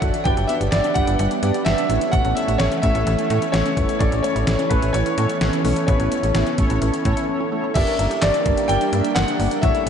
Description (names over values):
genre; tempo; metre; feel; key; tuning
synth-pop; 128 BPM; 4/4; straight; unclear; A4 = 440 Hz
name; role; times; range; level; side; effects
warm concert grand piano; melody; 0.0-9.9 s; B4 to G5; -23 LUFS; equal; wide subtle chorus, tape echo
mellow synth brass; accompaniment; 0.0-9.9 s; C#4 to E5; -25 LUFS; equal; chorus
phased analog pad; sustained chords; 0.0-9.9 s; E3 to E4; -26 LUFS; right 1 dB; phaser, chorus
wide unison pluck; arpeggios; 0.0-9.9 s; E3 to G4; -31 LUFS; left 1 dB; none
slap-like FM bass; bass; 0.0-9.9 s; F#1 to A2; -22 LUFS; equal; none
detuned 8-bit digital drum machine; drums; 0.0-9.9 s; crash cymbal, handclaps, hi-hat, kick drum, snare drum; -24 LUFS; equal; none
room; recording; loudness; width
wet huge ambient reverb, RT60 9.3 s; dreamy mix soaked in reverb, nothing above 10.8 kHz; -17 LUFS; side -7 dB against mid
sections
0.0-7.8 A section; 7.8-9.9 B section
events
break 7.3-7.8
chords
0.3 G; 1.9 A; 7.8 Gm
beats
| 0.26 0.72 1.19 1.66 | 2.13 2.60 3.07 3.54 | 4.00 4.47 4.94 5.41 | 5.88 6.35 6.82 7.29 | 7.75 8.22 8.69 9.16 | 9.63